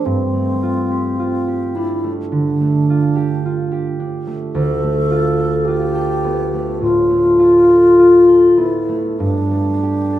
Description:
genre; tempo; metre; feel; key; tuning
classical, impressionist duo for alto flute and harp; 48-55 BPM; 4/4; rubato; unclear; A4 = 440 Hz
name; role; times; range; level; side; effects
mellow wooden-headed alto flute; melody; 0.0-10.2 s; C4 to A4; -14 LUFS; left 1 dB; none
concert harp; accompaniment; 0.0-10.2 s; D2 to A4; -19 LUFS; right 3 dB; none
room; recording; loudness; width
wet recital hall reverb, RT60 1.8 s; minimal, uncompressed stereo recording; -13 LUFS; side -13 dB against mid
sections
0.0-10.2 A section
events
none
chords
0.1 G9sus4; 4.5 Dm6; 9.2 Gadd9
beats
| 0.07 1.20 2.31 3.43 | 4.53 5.66 6.79 7.96 | 9.19

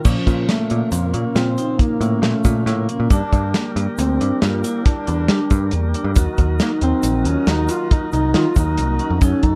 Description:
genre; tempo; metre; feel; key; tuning
progressive instrumental, band music in an uneven meter; 137 BPM; 7/4; straight; unclear; A4 = 441 Hz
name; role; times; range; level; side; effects
mellow bass clarinet; melody; 0.0-9.6 s; F3 to F4; -25 LUFS; equal; none
dark trombone; second line; 0.0-9.6 s; F3 to F4; -32 LUFS; equal; digital delay
tonewheel organ; accompaniment; 0.0-9.6 s; Bb2 to Bb3; -30 LUFS; equal; slow rotary speaker
vibraphone with medium hard mallets; arpeggios; 0.0-9.6 s; Bb3 to Gb4; -29 LUFS; equal; none
warm soul drum kit; drums; 0.0-9.5 s; crash cymbal, hi-hat, kick drum, snare drum; -20 LUFS; equal; none
picked electric bass; bass; 0.1-9.6 s; Bb1 to G3; -22 LUFS; equal; none
egg shaker; percussion; 0.1-9.4 s; none; -40 LUFS; equal; none
room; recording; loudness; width
light reverb; dark, warm production; -18 LUFS; mono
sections
0.1-9.6 A section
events
none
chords
0.1 Bbm; 3.1 Gm; 6.2 Ebm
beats
| 0.05 0.49 0.93 1.36 1.80 2.23 2.67 | 3.11 3.54 3.98 4.42 4.85 5.29 5.73 | 6.16 6.60 7.04 7.47 7.91 8.35 8.79 | 9.22

